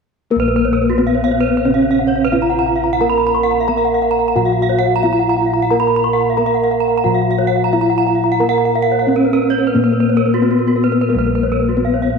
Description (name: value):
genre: Balinese gamelan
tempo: 89 BPM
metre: 4/4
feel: straight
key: Bb pelog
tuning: A4 = 440 Hz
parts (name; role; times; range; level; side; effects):
- gamelan-type bronze metallophone; melody; 0.3-12.2 s; Bb3 to Bb4; -16 LUFS; equal; none
- gamelan-type bronze metallophone; accompaniment; 0.3-12.2 s; C3+50c to Bb3; -25 LUFS; left 14 dB; none
- gamelan-type bronze metallophone; arpeggios; 0.3-12.2 s; Bb4 to C6+50c; -20 LUFS; left 7 dB; none
- gamelan-type bossed gongs; bass; 0.3-12.2 s; Bb1 to Bb4; -22 LUFS; equal; none
- gamelan-type bronze metallophone; arpeggios; 0.4-12.1 s; Gb4-40c to Cb6; -20 LUFS; right 10 dB; none
room: wet plate reverb, RT60 3.7 s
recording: 1960s-style stereo with parts hard left and right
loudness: -13 LUFS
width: side -5 dB against mid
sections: 0.3-12.2 A section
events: none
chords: none